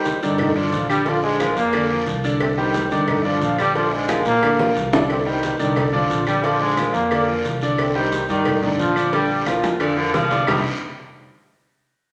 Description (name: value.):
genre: latin, salsa.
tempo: 178 BPM.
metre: 4/4.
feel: straight.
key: C minor.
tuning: A4 = 439 Hz.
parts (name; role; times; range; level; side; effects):
bright trombone section; melody; 0.0-10.6 s; G2 to F4; -24 LUFS; equal; none.
bright grand piano; accompaniment; 0.0-10.6 s; C3 to D5; -24 LUFS; equal; none.
congas; percussion; 0.1-10.6 s; none; -35 LUFS; equal; none.
cowbell and bongos; percussion; 0.1-10.6 s; none; -28 LUFS; equal; none.
guiro; percussion; 0.1-10.6 s; none; -37 LUFS; equal; none.
upright bass; bass; 0.2-10.6 s; Bb1 to Bb2; -31 LUFS; equal; none.
claves; percussion; 0.4-10.6 s; none; -36 LUFS; equal; none.
bright baritone saxophone; second line; 9.8-10.6 s; Bb2 to F3; -25 LUFS; equal; none.
room: wet large studio reverb, RT60 1.2 s.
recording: none.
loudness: -20 LUFS.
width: mono.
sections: 0.0-10.5 A section; 10.5-11.8 B section.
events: drum fill 4.1-5.1, 9.5-10.5.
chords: 0.0 Cmadd9; 1.1 Bb; 2.4 Cmadd9; 3.7 Bb; 5.1 Cmadd9; 6.4 Bb; 7.8 Cmadd9; 9.1 Bb; 10.5 Cmadd9.